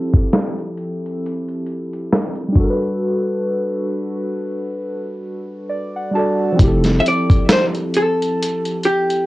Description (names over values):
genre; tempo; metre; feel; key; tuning
lo-fi hip hop; 67 BPM; 4/4; swing 57% on 16ths; F major; A4 = 440 Hz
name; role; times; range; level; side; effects
muted felt-like synth keys; accompaniment; 0.0-9.3 s; F3 to A5; -21 LUFS; equal; chorus, tremolo, cassette tape
dusty soul sampler-style drum kit; drums; 0.1-9.3 s; hi-hat, kick drum, snare drum; -16 LUFS; equal; none
saturated sub bass; bass; 6.6-7.0 s; F1; -17 LUFS; equal; none
vintage hollow-body jazz guitar; melody; 7.0-9.3 s; G4 to E5; -17 LUFS; equal; cassette tape
room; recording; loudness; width
light reverb; home recording on cassette, low-pass filter; -16 LUFS; side -18 dB against mid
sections
0.0-6.6 A section; 6.6-9.3 B section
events
filter sweep 0.0-6.6; break 3.0-6.6; synth keys fill 5.2-6.6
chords
0.0 Fmaj9; 2.6 Gmaj9; 6.6 Fmaj9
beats
0.32 1.22 2.12 | 3.01 3.91 4.80 5.70 | 6.59 7.49 8.38